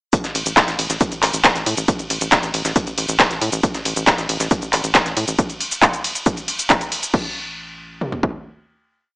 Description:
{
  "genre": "driving peak-time techno",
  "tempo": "137 BPM",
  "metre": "4/4",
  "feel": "straight",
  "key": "unclear",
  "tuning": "A4 = 443 Hz",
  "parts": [
    { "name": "dusty soul sampler-style drum kit", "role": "drums", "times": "0.1-5.3 s", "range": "hi-hat, snare drum", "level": "-24 LUFS", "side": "equal", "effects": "sidechain pumping on hats, high-pass filter on hats, high-pass filter on snare" },
    { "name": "punchy analog drum machine", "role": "drums", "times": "0.1-8.3 s", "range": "kick drum, toms", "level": "-20 LUFS", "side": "equal", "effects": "none" },
    { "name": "techno drum kit", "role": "drums", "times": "0.1-7.2 s", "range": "crash cymbal, handclaps, hi-hat, ride cymbal, shaker", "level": "-18 LUFS", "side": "equal", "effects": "sidechain pumping on hats, sidechain pumping on perc, sidechain pumping on cymbals" },
    { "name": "tight sequencer bass", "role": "bass", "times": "0.2-8.4 s", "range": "A1 to A2", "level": "-26 LUFS", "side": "equal", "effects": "sidechain pumping" }
  ],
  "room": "light reverb, digital ambience",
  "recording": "dry, gritty hardware recording, cassette tape, small speaker sound",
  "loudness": "-16 LUFS",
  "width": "side -26 dB against mid",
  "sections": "0.1-7.1 drop; 7.1-9.2 final note",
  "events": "drop 0.1-7.1",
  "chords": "none"
}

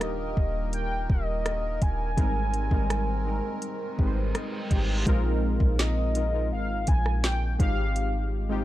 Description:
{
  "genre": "contemporary R&B",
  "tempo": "83 BPM",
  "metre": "4/4",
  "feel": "straight",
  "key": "unclear",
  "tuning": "A4 = 440 Hz",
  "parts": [
    { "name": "warm velvety synth lead", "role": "melody", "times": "0.0-8.3 s", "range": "Eb5 to Ab5", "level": "-32 LUFS", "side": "right 1 dB", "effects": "chorus, ping-pong delay" },
    { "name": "warm analog keys", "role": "accompaniment", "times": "0.0-8.6 s", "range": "G3 to G5", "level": "-32 LUFS", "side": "left 2 dB", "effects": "chorus" },
    { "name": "accordion", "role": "sustained chords", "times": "0.0-5.0 s", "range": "Eb3 to Bb4", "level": "-38 LUFS", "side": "right 3 dB", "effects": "light tremolo tuning, stereo widening" },
    { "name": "clean 808-style bass", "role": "bass", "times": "0.0-8.6 s", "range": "Eb1 to Bb1", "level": "-28 LUFS", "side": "equal", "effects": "none" },
    { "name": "smooth R&B drum kit", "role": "drums", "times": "0.0-8.1 s", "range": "hi-hat, kick drum, rim click, snare drum", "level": "-26 LUFS", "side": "equal", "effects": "none" },
    { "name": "reverse cymbal", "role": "sound effects", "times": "4.1-5.1 s", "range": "none", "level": "-38 LUFS", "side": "right 2 dB", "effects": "none" }
  ],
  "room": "little or no reverb",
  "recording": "dark, warm production",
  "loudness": "-24 LUFS",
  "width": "side -15 dB against mid",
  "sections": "0.0-5.1 A section; 5.1-8.6 B section",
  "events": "synth keys fill 4.0-5.1; reverse cymbal 4.1-5.1",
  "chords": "0.0 Ebmaj7; 2.2 Abmaj7; 5.1 Bb7sus4; 7.6 Fm7/Ab"
}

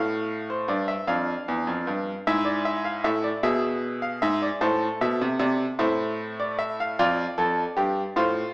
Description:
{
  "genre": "classical, baroque-style 3-part fugue for grand piano",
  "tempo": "51 BPM (dotted quarters)",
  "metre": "12/8",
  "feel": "straight",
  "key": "D minor",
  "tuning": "A4 = 438 Hz",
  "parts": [
    { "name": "bright grand piano", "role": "solo", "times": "0.0-8.5 s", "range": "E2 to F5", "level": "-23 LUFS", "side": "equal", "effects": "none" }
  ],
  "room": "moderate recital hall reverb, RT60 1.6 s",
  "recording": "small speaker sound",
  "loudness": "-23 LUFS",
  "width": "side -24 dB against mid",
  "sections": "0.0-8.5 A section",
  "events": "none",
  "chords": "0.0 Dm; 2.3 E7/G#; 4.6 Am; 7.0 F"
}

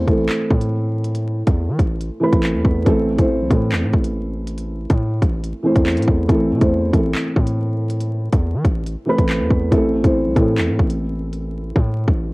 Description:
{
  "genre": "hip hop, drill",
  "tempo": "140 BPM",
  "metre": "4/4",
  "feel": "half-time",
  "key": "A minor",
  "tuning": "A4 = 441 Hz",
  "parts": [
    { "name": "felt-muted upright piano", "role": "accompaniment", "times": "0.0-12.3 s", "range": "E3 to C5", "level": "-20 LUFS", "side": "equal", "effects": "low-pass filter, cassette tape" },
    { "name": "distorted 808-style bass", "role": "bass", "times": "0.0-12.3 s", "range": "A1 to E3", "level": "-22 LUFS", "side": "equal", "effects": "distortion" },
    { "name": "drill drum kit", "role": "drums", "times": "0.1-12.2 s", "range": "handclaps, hi-hat, kick drum", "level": "-18 LUFS", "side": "equal", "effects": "none" }
  ],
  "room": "little or no reverb",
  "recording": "home recording on cassette, vinyl crackle",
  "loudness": "-16 LUFS",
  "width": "side -23 dB against mid",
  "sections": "0.0-12.3 A section",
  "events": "hi-hats muted 11.4-12.3",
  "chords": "0.0 Am"
}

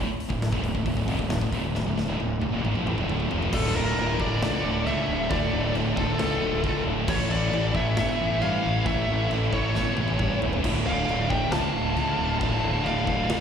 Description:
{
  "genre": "heavy metal",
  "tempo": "135 BPM",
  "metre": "4/4",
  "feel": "straight",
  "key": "D harmonic minor",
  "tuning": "A4 = 443 Hz",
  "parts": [
    { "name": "heavy high-gain guitar", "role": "riff", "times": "0.0-13.4 s", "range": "D2 to F3", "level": "-31 LUFS", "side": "left 12 dB", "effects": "distortion, slapback echo" },
    { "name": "scooped high-gain guitar", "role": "riff", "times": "0.0-13.4 s", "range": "D2 to A3", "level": "-31 LUFS", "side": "right 10 dB", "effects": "distortion" },
    { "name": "thick fuzz guitar", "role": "riff", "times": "0.0-13.4 s", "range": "D2 to A4", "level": "-32 LUFS", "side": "equal", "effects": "distortion, slapback echo" },
    { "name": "fuzz fingered electric bass", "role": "bass", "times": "0.0-13.4 s", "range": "D1 to G2", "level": "-28 LUFS", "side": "equal", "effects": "overdrive" },
    { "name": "big rock drum kit", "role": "drums", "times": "0.2-13.4 s", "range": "china cymbal, crash cymbal, hi-hat, kick drum, snare drum, toms", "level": "-32 LUFS", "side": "equal", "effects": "none" },
    { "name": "high-gain lead guitar", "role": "melody", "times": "3.5-13.4 s", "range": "A4 to A5", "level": "-29 LUFS", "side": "left 1 dB", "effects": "distortion, slapback echo, tape echo" },
    { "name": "high-gain lead guitar", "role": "second line", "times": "3.5-13.4 s", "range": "F4 to F5", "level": "-36 LUFS", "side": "right 4 dB", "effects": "distortion, slapback echo" }
  ],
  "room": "little or no reverb",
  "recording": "live gig heard through the venue's PA, recital hall reverb",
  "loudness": "-23 LUFS",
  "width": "side -7 dB against mid",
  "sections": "0.0-3.5 A section; 3.5-13.4 B section",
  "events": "drum fill 1.7-3.5, 9.7-10.6; half time 3.5-13.4",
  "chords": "0.0 Dm; 7.1 A; 10.6 Dm"
}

